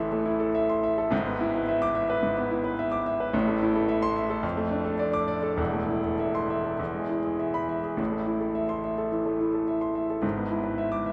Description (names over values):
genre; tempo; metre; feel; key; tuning
classical, virtuoso piano study; 107 BPM; 4/4; rubato; A minor; A4 = 439 Hz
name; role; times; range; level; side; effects
clear grand piano; solo; 0.0-11.1 s; E1 to D6; -27 LUFS; equal; none
room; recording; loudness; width
wet cathedral reverb, RT60 6.7 s; recorded in a church or concert hall; -27 LUFS; mono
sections
0.0-11.1 A section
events
none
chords
0.0 Am; 1.1 E7/G#; 3.3 Am; 4.4 Dm/F; 5.6 Am/E; 6.8 E; 8.0 Am; 10.2 E7/G#